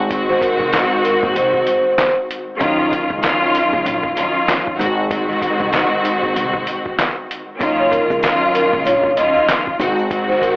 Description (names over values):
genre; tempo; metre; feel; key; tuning
hip hop, boom-bap hip-hop; 96 BPM; 4/4; swing 60% on 16ths; unclear; A4 = 439 Hz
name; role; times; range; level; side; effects
warm studio string section; accompaniment; 0.0-10.6 s; Eb3 to Gb4; -17 LUFS; equal; cassette tape
upright bass; bass; 0.0-10.3 s; Ab1 to Eb2; -25 LUFS; equal; none
trip hop sampler-style drum kit; drums; 0.1-10.6 s; handclaps, hi-hat, kick drum, snare drum; -22 LUFS; equal; none
vibraphone with soft mallets; melody; 0.3-2.1, 7.8-10.6 s; Bb4 to Eb5; -17 LUFS; equal; none
tube shaker; percussion; 7.6-10.6 s; none; -51 LUFS; left 1 dB; none
room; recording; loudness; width
light reverb, small room ambience; vinyl crackle, telephone sound; -14 LUFS; side -24 dB against mid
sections
0.0-10.6 A section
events
none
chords
0.0 Ab7; 2.6 Ebm9; 4.8 Ab7; 7.6 Ebm9; 9.8 Ab7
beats
| 0.11 0.73 1.36 1.98 | 2.61 3.23 3.86 4.48 | 5.11 5.73 6.36 6.98 | 7.61 8.23 8.86 9.48 | 10.11